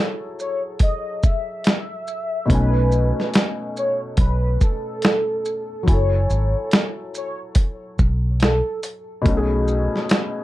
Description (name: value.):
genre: lo-fi hip hop.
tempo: 71 BPM.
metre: 4/4.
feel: swing 61% on 16ths.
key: F# dorian.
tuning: A4 = 439 Hz.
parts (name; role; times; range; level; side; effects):
felt-muted upright piano; accompaniment; 0.0-10.4 s; B2 to G#5; -26 LUFS; left 2 dB; cassette tape, plate reverb.
warm velvety synth lead; melody; 0.4-8.8 s; A4 to E5; -25 LUFS; equal; chorus, phaser, analog delay, plate reverb.
dusty soul sampler-style drum kit; drums; 0.4-10.3 s; hi-hat, kick drum, shaker, snare drum; -18 LUFS; equal; none.
vintage muted fingered electric bass; bass; 2.5-9.9 s; F#1 to B1; -20 LUFS; equal; none.
room: moderate small room reverb, RT60 0.6 s.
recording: dark, warm production.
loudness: -18 LUFS.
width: side -16 dB against mid.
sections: 0.0-10.4 A section.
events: break 0.0-2.5.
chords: 0.0 F#m9; 2.5 B13; 5.9 F#m9; 9.3 B13.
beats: 0.80 1.65 | 2.49 3.34 4.18 5.03 | 5.87 6.72 7.57 8.41 | 9.26 10.10.